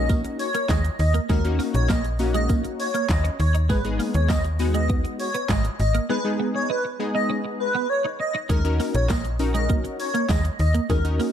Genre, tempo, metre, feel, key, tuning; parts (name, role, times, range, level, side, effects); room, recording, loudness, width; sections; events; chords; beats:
dance-pop; 100 BPM; 4/4; straight; Eb minor; A4 = 440 Hz
airy dreamy lead; melody; 0.0-11.0 s; Bb4 to Eb5; -27 LUFS; equal; chorus, sidechain pumping, digital delay
funky polysynth comp; accompaniment; 0.0-11.3 s; Ab3 to Bb4; -28 LUFS; left 3 dB; chorus, sidechain pumping
twelve-string electric guitar; riff; 0.0-11.3 s; Ab3 to Eb4; -30 LUFS; right 5 dB; ensemble chorus
slap-like FM bass; bass; 0.0-11.2 s; Ab1 to Eb2; -22 LUFS; equal; sidechain pumping
pop drum kit; drums; 0.1-11.3 s; handclaps, hi-hat, kick drum, shaker, snare drum; -26 LUFS; equal
tambourine; percussion; 0.1-11.3 s; -45 LUFS; left 10 dB
light reverb; dark, warm production; -20 LUFS; side -9 dB against mid
0.0-8.5 A section; 8.5-11.3 A section
drop 0.0-8.5, 8.5-11.3
0.0 Ebm7; 3.7 Abm; 8.5 Ebm7
0.10 0.70 | 1.30 1.90 2.50 3.10 | 3.70 4.30 4.90 5.50 | 6.10 6.70 7.30 7.90 | 8.50 9.10 9.70 10.30 | 10.90